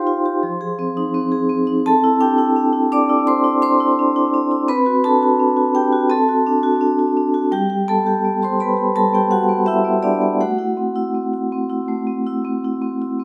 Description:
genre	classical, contemporary piece for solo vibraphone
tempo	84 BPM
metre	4/4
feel	rubato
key	unclear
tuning	A4 = 440 Hz
part	vibraphone with medium mallets	solo	0.0-13.2 s	F3 to D6	-18 LUFS	equal	none
room	wet stone room reverb, RT60 1.4 s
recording	none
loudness	-18 LUFS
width	mono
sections	0.0-13.2 A section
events	none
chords	0.4 Fm7; 1.9 Cadd9; 4.7 Gmaj7/C; 6.1 D7/C; 7.5 Gadd9; 10.4 Am6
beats	0.43 1.14 | 1.85 2.56 3.27 3.98 | 4.69 5.39 6.09 6.80 | 7.52 8.23 8.94 9.67 | 10.41 11.16 11.90 12.64

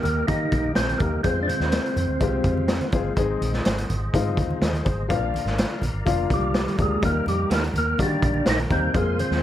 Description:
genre	uptempo 1960s-style soul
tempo	125 BPM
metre	4/4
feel	straight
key	Eb major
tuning	A4 = 440 Hz
part	percussive tonewheel organ	melody	0.0-2.9, 6.3-9.4 s	G3 to Eb4	-25 LUFS	right 1 dB	overdrive, chorus vibrato, fast rotary speaker, plate reverb
part	warm upright piano	accompaniment	0.0-9.4 s	Eb3 to Eb5	-28 LUFS	left 6 dB	plate reverb
part	percussive tonewheel organ	sustained chords	0.0-9.4 s	Ab3 to C6	-37 LUFS	equal	slow rotary speaker, overdrive, chorus vibrato, plate reverb
part	vintage muted fingered electric bass	bass	0.0-9.4 s	F1 to Eb3	-27 LUFS	equal	none
part	congas	percussion	0.0-9.3 s	none	-35 LUFS	right 2 dB	none
part	raw garage drum kit	drums	0.1-9.4 s	hi-hat, kick drum, snare drum	-25 LUFS	equal	none
part	electric guitar through a small old amp	stabs	7.5-8.8 s	Bb3 to Bb4	-32 LUFS	right 5 dB	plate reverb
room	light reverb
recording	none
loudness	-20 LUFS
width	side -11 dB against mid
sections	0.0-9.4 A section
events	none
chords	0.0 Eb; 1.2 Fm; 3.2 Ab; 5.1 Bb; 7.0 Eb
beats	0.28 0.76 | 1.24 1.72 2.21 2.69 | 3.17 3.65 4.13 4.61 | 5.09 5.58 6.06 6.54 | 7.02 7.50 7.99 8.47 | 8.95

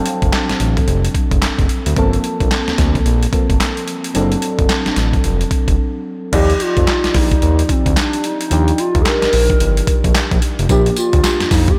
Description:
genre	R&B, new jack swing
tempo	110 BPM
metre	4/4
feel	swing 62% on 16ths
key	unclear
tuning	A4 = 445 Hz
part	mellow FM electric piano	accompaniment	0.0-11.8 s	F3 to D5	-23 LUFS	equal	chorus, tube saturation
part	boom bap sampler-style drum kit	drums	0.1-11.8 s	crash cymbal, handclaps, hi-hat, kick drum, snare drum, tambourine	-19 LUFS	equal	none
part	smooth synth bass	bass	0.2-11.7 s	F1 to F2	-19 LUFS	equal	none
part	hollow clarinet-like synth lead	melody	6.3-11.8 s	C4 to Bb4	-21 LUFS	equal	chorus, delay
room	moderate cathedral reverb, RT60 4.1 s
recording	dreamy mix soaked in reverb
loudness	-16 LUFS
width	mono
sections	0.0-6.3 A section; 6.3-11.8 B section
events	break 5.8-6.3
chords	0.0 D7/F#; 2.0 Gm11; 4.1 D7/F#; 6.3 Ebmaj9; 10.7 Bb6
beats	0.33 0.88 1.42 | 1.97 2.51 3.06 3.60 | 4.15 4.69 5.24 5.78 | 6.33 6.88 7.42 7.97 | 8.51 9.06 9.60 10.15 | 10.69 11.24 11.78

